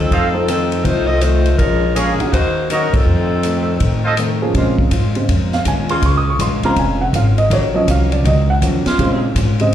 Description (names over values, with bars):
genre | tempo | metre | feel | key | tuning
jazz, big band swing | 162 BPM | 4/4 | swing 64% on 8ths | Bb minor | A4 = 442 Hz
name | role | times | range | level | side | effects
warm saxophone section | melody | 0.0-4.2 s | F3 to Eb5 | -18 LUFS | left 2 dB | slapback echo
upright bass | bass | 0.0-9.7 s | F1 to Bb2 | -17 LUFS | equal | none
picked plugged-in steel-string acoustic guitar | accompaniment | 0.1-9.6 s | F2 to Gb4 | -24 LUFS | left 3 dB | slapback echo
clear trumpet section | stabs | 0.1-4.1 s | F4 to F5 | -21 LUFS | right 3 dB | slapback echo
swinging big-band drum kit | drums | 0.1-9.7 s | hi-hat, kick drum, ride cymbal, snare drum | -22 LUFS | equal | none
warm baby grand piano | accompaniment | 0.3-9.7 s | Db3 to Eb6 | -18 LUFS | right 2 dB | slapback echo
clear saxophone section | sustained chords | 4.6-9.3 s | Db3 to F4 | -24 LUFS | equal | none
room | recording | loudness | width
small room ambience | live gig heard through the venue's PA, club reverb | -13 LUFS | side -11 dB against mid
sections
0.0-4.5 A section; 4.5-9.7 B section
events
band accent 2.9; grand piano solo 4.5-9.7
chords
0.1 F7; 1.6 Bbm7; 2.3 Ebm7; 3.1 F7; 4.5 Bbm7; 7.5 Ebm7; 9.0 Bbm7